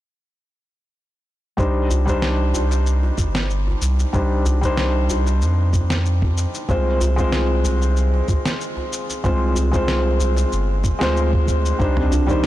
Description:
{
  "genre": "organic downtempo",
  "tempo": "94 BPM",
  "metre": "4/4",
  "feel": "swing 54% on 16ths",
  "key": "C minor",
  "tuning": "A4 = 439 Hz",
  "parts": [
    { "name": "felt-muted upright piano", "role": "accompaniment", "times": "1.6-12.5 s", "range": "Eb3 to D5", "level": "-22 LUFS", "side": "left 1 dB", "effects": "sidechain pumping, low-pass filter, ping-pong delay" },
    { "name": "warm sub bass", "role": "bass", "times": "1.6-12.5 s", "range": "G1 to F2", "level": "-19 LUFS", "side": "equal", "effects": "transformer saturation, sidechain pumping" },
    { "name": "dusty soul sampler-style drum kit", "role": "drums", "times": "1.6-12.5 s", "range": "cabasa, snare drum, toms", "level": "-28 LUFS", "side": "equal", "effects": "none" },
    { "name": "electronic kick drum", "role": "drums", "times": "1.6-12.4 s", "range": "none", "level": "-21 LUFS", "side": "equal", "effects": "none" },
    { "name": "djembe", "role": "percussion", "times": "1.9-12.4 s", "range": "none", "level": "-28 LUFS", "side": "left 1 dB", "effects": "none" },
    { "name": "kalimba", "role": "arpeggios", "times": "12.0-12.5 s", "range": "C4 to Eb4", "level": "-22 LUFS", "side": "right 4 dB", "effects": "none" }
  ],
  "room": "light reverb, small room ambience",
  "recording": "blown-out, overdriven recording, overdrive",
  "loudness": "-17 LUFS",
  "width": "side -14 dB against mid",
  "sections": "1.6-12.5 A section",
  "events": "none",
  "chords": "1.6 Cmadd9; 6.7 Fm/C; 11.8 Cmadd9"
}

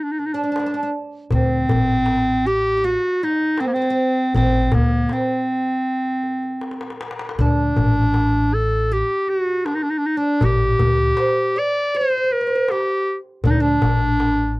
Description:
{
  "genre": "Turkish makam ensemble",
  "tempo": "79 BPM",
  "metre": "4/4",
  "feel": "straight",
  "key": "D makam hicaz",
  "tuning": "A4 = 436 Hz",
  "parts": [
    { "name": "clear clarinet", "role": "melody", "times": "0.0-14.6 s", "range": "B3-40c to D5", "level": "-19 LUFS", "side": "equal", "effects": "none" },
    { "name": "darbuka", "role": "percussion", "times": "0.2-14.4 s", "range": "none", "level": "-22 LUFS", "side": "left 2 dB", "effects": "none" },
    { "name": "oud", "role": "second line", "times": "0.3-14.6 s", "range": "B3-40c to D5", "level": "-26 LUFS", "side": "right 2 dB", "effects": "none" },
    { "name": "upright bass", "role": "bass", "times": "1.3-14.6 s", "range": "A1 to D2", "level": "-22 LUFS", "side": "equal", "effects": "none" }
  ],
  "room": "light reverb",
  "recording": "dry, close 1970s-style studio recording",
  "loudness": "-17 LUFS",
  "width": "side -22 dB against mid",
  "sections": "0.0-14.6 A section",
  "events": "drum fill 6.6-7.4",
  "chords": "none"
}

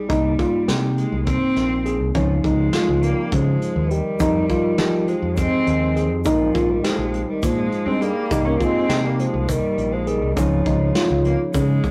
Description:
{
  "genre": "progressive instrumental, band music in an uneven meter",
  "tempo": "204 BPM (eighths)",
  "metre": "7/8",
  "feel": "straight",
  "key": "unclear",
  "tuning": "A4 = 441 Hz",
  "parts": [
    { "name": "rich cello", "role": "melody", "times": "0.0-11.9 s", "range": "F3 to Db4", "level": "-28 LUFS", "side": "equal", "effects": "none" },
    { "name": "tine electric piano", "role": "accompaniment", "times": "0.0-11.9 s", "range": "F3 to G4", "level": "-28 LUFS", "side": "equal", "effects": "none" },
    { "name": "tine electric piano", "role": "arpeggios", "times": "0.0-11.4 s", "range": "Db4 to Ab4", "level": "-26 LUFS", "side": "equal", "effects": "none" },
    { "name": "modern bright fingered electric bass", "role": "bass", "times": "0.1-11.8 s", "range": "Bb1 to F3", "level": "-25 LUFS", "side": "equal", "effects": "none" },
    { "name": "vintage brush drum kit", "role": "drums", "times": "0.1-11.9 s", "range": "hi-hat, kick drum, snare drum", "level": "-28 LUFS", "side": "equal", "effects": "none" },
    { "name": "clear trombone", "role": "second line", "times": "3.0-11.9 s", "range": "Bb2 to Bb3", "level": "-29 LUFS", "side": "equal", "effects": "none" },
    { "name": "egg shaker", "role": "percussion", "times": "4.2-11.9 s", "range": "none", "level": "-44 LUFS", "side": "equal", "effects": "none" }
  ],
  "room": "wet studio reverb, RT60 0.6 s",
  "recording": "rough rehearsal-room recording, warm saturation",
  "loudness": "-20 LUFS",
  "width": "mono",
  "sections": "0.0-11.9 A section",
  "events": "drum fill 11.6-11.9",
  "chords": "0.0 Bbsus4; 2.2 Dbmaj7; 4.2 Fm9; 6.3 Bb7sus4; 10.4 Dbmaj7"
}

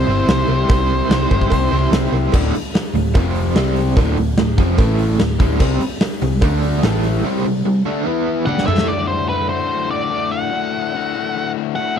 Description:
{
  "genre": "classic rock",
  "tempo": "146 BPM",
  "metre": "4/4",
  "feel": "straight",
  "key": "D mixolydian",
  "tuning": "A4 = 439 Hz",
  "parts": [
    { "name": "octave-fuzz lead guitar", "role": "melody", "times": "0.0-1.9, 8.5-12.0 s", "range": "B4 to F#5", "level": "-21 LUFS", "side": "equal", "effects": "distortion, slapback echo" },
    { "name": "biting overdriven guitar", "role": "riff", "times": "0.0-8.9 s", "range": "D2 to A4", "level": "-23 LUFS", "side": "equal", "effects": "none" },
    { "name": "cranked stack guitar", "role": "riff", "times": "0.0-12.0 s", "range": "D2 to C5", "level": "-23 LUFS", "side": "left 13 dB", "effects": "overdrive" },
    { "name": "crunchy overdriven guitar", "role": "riff", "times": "0.0-8.9 s", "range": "D2 to C5", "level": "-23 LUFS", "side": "right 12 dB", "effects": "tremolo" },
    { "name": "hollow-body short-scale picked electric bass", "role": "bass", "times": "0.0-7.2 s", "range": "D1 to D2", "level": "-19 LUFS", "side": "equal", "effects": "none" },
    { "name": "huge arena drum kit", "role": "drums", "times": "0.3-8.9 s", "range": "crash cymbal, hi-hat, kick drum, snare drum, toms", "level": "-19 LUFS", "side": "equal", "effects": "none" },
    { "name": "cowbell", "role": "percussion", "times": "0.3-6.9 s", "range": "none", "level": "-30 LUFS", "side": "right 12 dB", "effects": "none" }
  ],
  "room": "little or no reverb",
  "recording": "none",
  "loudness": "-15 LUFS",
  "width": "side -8 dB against mid",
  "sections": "0.0-2.3 A section; 2.3-8.9 B section; 8.9-12.0 A section",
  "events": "drum fill 8.5-8.9",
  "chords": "0.0 C; 2.3 D5; 3.2 F5; 3.6 C5; 4.0 D5; 4.8 A5; 5.2 D5; 5.6 C5; 6.4 D5; 6.8 A5; 7.2 C5; 8.1 E5; 8.5 Em11/G; 8.9 D"
}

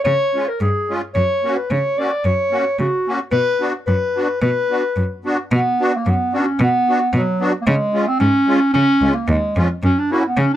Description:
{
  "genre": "alpine folk, alpine dance band",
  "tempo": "110 BPM",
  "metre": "2/4",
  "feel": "straight",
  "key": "B harmonic minor",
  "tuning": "A4 = 439 Hz",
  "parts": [
    { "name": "mellow clarinet", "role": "melody", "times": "0.0-10.6 s", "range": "F#3 to D5", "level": "-17 LUFS", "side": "equal", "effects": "none" },
    { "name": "clear cello", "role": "bass", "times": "0.1-10.4 s", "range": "C#2 to C#3", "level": "-18 LUFS", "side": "equal", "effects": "none" },
    { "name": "musette accordion", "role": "accompaniment", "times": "0.3-10.2 s", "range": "G#3 to F#4", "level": "-21 LUFS", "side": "equal", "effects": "none" }
  ],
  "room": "little or no reverb",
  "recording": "dry, close 1970s-style studio recording",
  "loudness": "-15 LUFS",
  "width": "side -12 dB against mid",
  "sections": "0.0-5.5 A section; 5.5-10.6 A section",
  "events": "none",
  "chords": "0.0 C#; 1.2 F#; 3.3 Bm; 7.7 C#; 9.8 F#"
}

